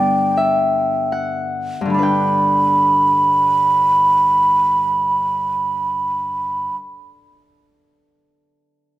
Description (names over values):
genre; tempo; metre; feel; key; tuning
celtic folk; 36-42 BPM; 3/4; rubato; G major; A4 = 440 Hz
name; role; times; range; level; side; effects
mellow hollow wooden flute; melody; 0.0-6.8 s; G5 to B5; -15 LUFS; right 2 dB; none
Celtic harp; accompaniment; 0.0-6.9 s; G2 to G5; -22 LUFS; left 2 dB; none
room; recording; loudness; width
moderate recital hall reverb, RT60 1.4 s; none; -14 LUFS; side -14 dB against mid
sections
0.0-1.9 A section; 1.9-6.7 B section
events
harp fill 0.0-1.9; slowing down 0.0-1.9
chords
0.0 G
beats
0.36 | 1.92 3.51 5.06